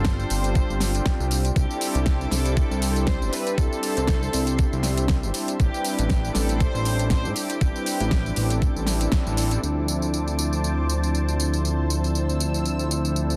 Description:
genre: nu-disco, nu disco.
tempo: 119 BPM.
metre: 4/4.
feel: swing 55% on 16ths.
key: D dorian.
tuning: A4 = 440 Hz.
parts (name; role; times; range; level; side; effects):
rich studio violin section; melody; 0.0-9.1 s; G4 to C5; -35 LUFS; equal; delay.
warm analog pad; accompaniment; 0.0-13.4 s; F3 to B4; -30 LUFS; equal; chorus, digital delay.
lush unison pad; sustained chords; 0.0-13.4 s; C4 to E6; -38 LUFS; equal; chorus, phaser, sidechain pumping.
fat analog bass; bass; 0.0-13.4 s; G1 to A2; -27 LUFS; equal; none.
pop drum kit; drums; 0.0-13.4 s; hi-hat, snare drum, tambourine; -32 LUFS; equal; overdrive.
electronic kick drum; drums; 0.1-9.2 s; none; -25 LUFS; equal; none.
room: digital ambience.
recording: dense, heavily limited modern master.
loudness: -23 LUFS.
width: mono.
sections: 0.0-9.6 A section; 9.6-13.4 B section.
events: band accent 9.1.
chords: 0.0 G9sus4; 1.3 C69; 5.6 Am11; 9.6 Dm7.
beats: 0.05 0.56 1.06 | 1.56 2.07 2.57 3.08 | 3.58 4.08 4.59 5.09 | 5.60 6.10 6.61 7.11 | 7.61 8.12 8.62 9.13 | 9.63 10.13 10.64 11.14 | 11.65 12.15 12.66 13.16.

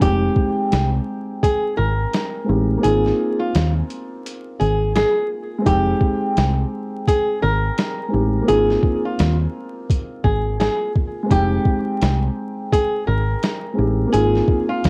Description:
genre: hip hop, boom-bap hip-hop.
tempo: 85 BPM.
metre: 4/4.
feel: swing 60% on 16ths.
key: F minor.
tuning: A4 = 443 Hz.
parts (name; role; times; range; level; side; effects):
flamenco guitar; melody; 0.0-14.9 s; F4 to Bb4; -24 LUFS; equal; high-pass filter, low-pass filter, cassette tape, analog delay.
dark grand piano; accompaniment; 0.0-14.9 s; Ab3 to G5; -26 LUFS; equal; cassette tape, high-pass filter, low-pass filter.
deep dub fingered electric bass; bass; 0.0-14.9 s; F1 to Eb2; -22 LUFS; equal; transformer saturation.
boom bap sampler-style drum kit; drums; 0.0-14.9 s; hi-hat, kick drum, snare drum; -23 LUFS; equal; cassette tape.
room: moderate studio reverb, RT60 0.6 s.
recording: home recording on cassette, vinyl crackle.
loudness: -19 LUFS.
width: mono.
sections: 0.0-14.9 A section.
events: kick muted 2.8-5.7.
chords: 0.0 Fm9 (rootless); 2.8 Ab6; 5.7 Fm9 (rootless); 8.5 Ab6; 11.3 Fm9 (rootless); 14.1 Ab6.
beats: | 0.01 0.72 1.42 2.13 | 2.84 3.54 4.25 4.95 | 5.66 6.37 7.07 7.78 | 8.48 9.19 9.89 10.60 | 11.31 12.01 12.72 13.42 | 14.13 14.84.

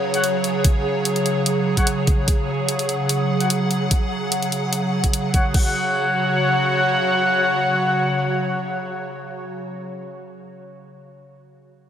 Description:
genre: heavy wobble dubstep.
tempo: 147 BPM.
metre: 4/4.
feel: half-time.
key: unclear.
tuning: A4 = 440 Hz.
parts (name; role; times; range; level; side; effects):
evolving wavetable pad; sustained chords; 0.0-9.6 s; C#3 to F#5; -22 LUFS; right 1 dB; ensemble chorus, built-in reverb, sidechain pumping.
clear brass ensemble; stabs; 0.1-9.6 s; F#4 to F#5; -21 LUFS; left 1 dB; low-pass filter, tape echo.
dubstep drum kit; drums; 0.1-5.6 s; crash cymbal, hi-hat; -24 LUFS; left 1 dB; none.
electronic kick drum; drums; 0.6-5.6 s; none; -18 LUFS; equal; overdrive.
room: wet lush hall reverb, RT60 1.7 s.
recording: none.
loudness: -18 LUFS.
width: side -9 dB against mid.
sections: 0.0-5.5 A section; 5.5-8.8 B section.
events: none.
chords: 0.0 F#5.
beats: 0.24 | 0.65 1.05 1.46 1.87 | 2.28 2.69 3.09 3.50 | 3.91 4.32 4.73 5.13 | 5.54 5.95 6.36 6.77 | 7.17 7.58 7.99 8.40.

